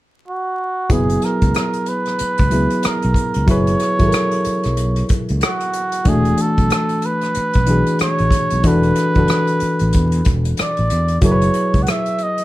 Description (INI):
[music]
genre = R&B, neo-soul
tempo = 93 BPM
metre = 4/4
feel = swing 59% on 16ths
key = unclear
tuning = A4 = 441 Hz
[part]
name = trumpet with cup mute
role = melody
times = 0.3-12.4 s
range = F#4 to F#5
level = -21 LUFS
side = right 2 dB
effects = none
[part]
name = reed electric piano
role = accompaniment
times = 0.9-12.4 s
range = E3 to B4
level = -19 LUFS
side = left 1 dB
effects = none
[part]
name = fretless electric bass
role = bass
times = 0.9-11.9 s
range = E1 to E2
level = -18 LUFS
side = equal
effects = none
[part]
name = unplugged drum kit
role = drums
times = 0.9-12.4 s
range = hi-hat, kick drum, rim click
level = -20 LUFS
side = equal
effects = none
[sound]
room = small room reverb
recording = dark, warm production, vinyl crackle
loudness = -14 LUFS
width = side -16 dB against mid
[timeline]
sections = 0.9-12.4 A section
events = none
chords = 0.0 N.C.; 0.9 F#9sus4; 6.1 E9sus4; 11.2 F#9sus4